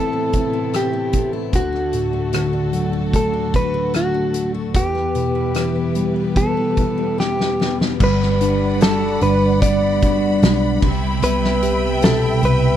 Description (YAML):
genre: pop ballad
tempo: 75 BPM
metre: 4/4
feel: straight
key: G major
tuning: A4 = 442 Hz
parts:
  - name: direct-recorded clean electric guitar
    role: melody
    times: 0.0-12.8 s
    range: F#4 to D5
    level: -21 LUFS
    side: equal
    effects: slapback echo
  - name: mellow tine electric piano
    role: accompaniment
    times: 0.0-12.8 s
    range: D2 to G4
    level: -22 LUFS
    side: equal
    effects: medium stereo tremolo
  - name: warm studio string section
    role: sustained chords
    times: 0.0-12.8 s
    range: D2 to B5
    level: -26 LUFS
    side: right 1 dB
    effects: none
  - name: picked steel-string acoustic guitar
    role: arpeggios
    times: 0.0-12.8 s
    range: E2 to F#4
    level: -28 LUFS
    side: left 15 dB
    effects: none
  - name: loose indie drum kit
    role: drums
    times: 0.3-12.6 s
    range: crash cymbal, hi-hat, kick drum, rim click, snare drum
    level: -20 LUFS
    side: equal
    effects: none
  - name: vintage muted fingered electric bass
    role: bass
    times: 8.0-12.8 s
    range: G1 to C2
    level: -21 LUFS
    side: equal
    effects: none
room: little or no reverb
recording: none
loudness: -16 LUFS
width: side -10 dB against mid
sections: 0.0-8.0 A section; 8.0-12.8 B section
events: drum fill 7.2-8.0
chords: 0.0 Amadd9; 1.5 D; 4.7 Em; 8.0 Gmaj7; 10.8 Cmaj7